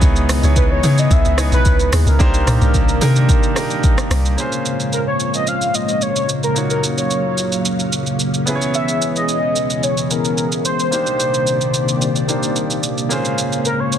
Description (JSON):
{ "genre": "amapiano", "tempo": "110 BPM", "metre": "4/4", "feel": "straight", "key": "Bb dorian", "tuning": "A4 = 439 Hz", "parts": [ { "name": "warm concert grand piano", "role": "accompaniment", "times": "0.0-14.0 s", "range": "Bb3 to Db5", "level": "-23 LUFS", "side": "right 2 dB", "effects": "none" }, { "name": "string machine, cellos", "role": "sustained chords", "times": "0.0-14.0 s", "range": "C3 to F5", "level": "-21 LUFS", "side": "left 1 dB", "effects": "ensemble chorus" }, { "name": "deep log drum bass", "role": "bass", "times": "0.0-4.4 s", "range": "Cb2 to Db3", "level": "-15 LUFS", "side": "equal", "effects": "none" }, { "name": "afro-pop drum kit", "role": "drums", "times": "0.0-14.0 s", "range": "hi-hat, kick drum, rim click, shaker, toms", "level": "-18 LUFS", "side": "equal", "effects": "soft clipping on snare" }, { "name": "warm velvety synth lead", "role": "melody", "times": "0.6-14.0 s", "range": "Ab4 to F5", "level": "-21 LUFS", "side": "left 1 dB", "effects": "chorus, tape echo" } ], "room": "light reverb", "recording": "dense, heavily limited modern master", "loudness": "-14 LUFS", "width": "side -9 dB against mid", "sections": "0.0-4.4 A section; 4.4-14.0 B section", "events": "drop 0.0-4.4", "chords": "0.0 Dbm9; 2.2 Cm9; 4.4 Bbm9; 6.6 Ebm9; 8.5 Dbm9; 10.9 Cm9; 13.1 Bbm9" }